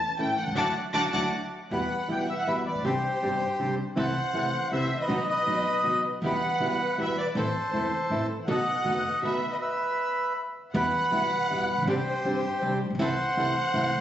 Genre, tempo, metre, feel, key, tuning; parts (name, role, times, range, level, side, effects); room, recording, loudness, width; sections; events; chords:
tango; 160 BPM; 3/4; rubato; E minor; A4 = 440 Hz
warm studio violin section; second line; 0.0-14.0 s; C5 to D6; -31 LUFS; left 1 dB
nylon-string guitar; accompaniment; 0.2-13.9 s; B2 to G4; -31 LUFS; right 1 dB
rich chamber string section; stabs; 0.2-13.9 s; B3 to A4; -37 LUFS; equal
upright bass; bass; 0.2-14.0 s; E1 to E2; -34 LUFS; equal
bandoneon; melody; 1.7-14.0 s; G4 to G5; -28 LUFS; equal
moderate concert hall reverb, RT60 2.4 s; recorded on a phone in the room, studio reverb, nothing above 7.7 kHz; -25 LUFS; side -11 dB against mid
0.0-1.7 A section; 1.7-10.7 B section; 10.7-14.0 C section
violin section solo 0.0-1.7; band accent 0.6-1.7; stop 9.6-10.7
0.0 A; 0.6 Dadd9; 1.7 Em; 2.8 Csus2; 4.0 Am/C; 5.1 B; 6.2 Em; 7.4 Am; 8.5 B7; 9.6 N.C.; 10.7 Em; 11.9 Csus2; 13.0 Am/C